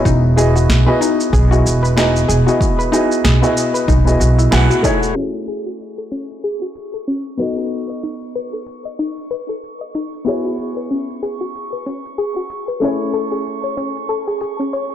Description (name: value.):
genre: sunset chillout.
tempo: 94 BPM.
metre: 4/4.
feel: swing 57% on 16ths.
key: E major.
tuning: A4 = 440 Hz.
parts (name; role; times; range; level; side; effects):
dark baby grand piano; accompaniment; 0.0-14.9 s; A3 to F#5; -19 LUFS; moving between left 4 dB and right 2 dB; auto-pan, low-pass filter, tape echo.
soft round pluck; arpeggios; 0.0-14.9 s; C#4 to D#5; -22 LUFS; left 2 dB; chorus, tape echo.
upright bass; bass; 0.1-4.7 s; E1 to B1; -14 LUFS; equal; none.
electronic kick drum; drums; 0.1-5.0 s; none; -19 LUFS; right 1 dB; overdrive, small room reverb.
smooth R&B drum kit; drums; 0.1-14.9 s; hi-hat, shaker, snare drum; -22 LUFS; right 1 dB; overdrive, small room reverb.
drifting glass-harmonics texture; texture; 6.6-14.9 s; C#6; -32 LUFS; right 7 dB; chorus, built-in reverb.
room: moderate plate reverb, RT60 2.4 s.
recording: blown-out, overdriven recording, overdrive, low-pass filter.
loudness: -15 LUFS.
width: side -10 dB against mid.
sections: 0.0-5.2 A section; 5.2-14.9 B section.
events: band accent 4.5-4.8; filter sweep on grand piano 5.2-14.9.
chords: 0.0 Emaj9; 5.2 F#m9; 7.4 B7; 10.3 E69; 12.8 Amaj7.